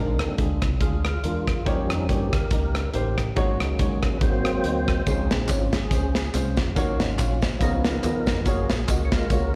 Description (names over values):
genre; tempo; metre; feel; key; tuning
uptempo gospel; 141 BPM; 4/4; swing 57% on 8ths; Db major; A4 = 439 Hz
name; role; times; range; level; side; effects
dark upright piano; accompaniment; 0.0-9.6 s; Ab2 to Gb5; -32 LUFS; equal; slapback echo
percussive tonewheel organ; sustained chords; 0.0-9.6 s; D3 to Db5; -31 LUFS; equal; slow rotary speaker, overdrive, chorus vibrato
fingered electric bass with an envelope filter; bass; 0.0-9.6 s; Gb1 to G2; -29 LUFS; equal; none
modern studio drum kit; drums; 0.2-9.4 s; hi-hat, kick drum, rim click, snare drum; -27 LUFS; equal; none
tambourine and handclaps; percussion; 5.1-9.4 s; none; -42 LUFS; equal; slapback echo
room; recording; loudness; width
light reverb, studio reverb; live gig heard through the venue's PA, recital hall reverb; -24 LUFS; mono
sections
0.0-9.6 A section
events
tonewheel organ solo 0.0-9.6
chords
0.0 Bb7; 1.7 Eb7; 3.4 Ab7sus4; 4.2 Ab7; 5.1 Dbmaj7; 6.8 Ebm7; 7.6 Db7; 8.5 Gbmaj7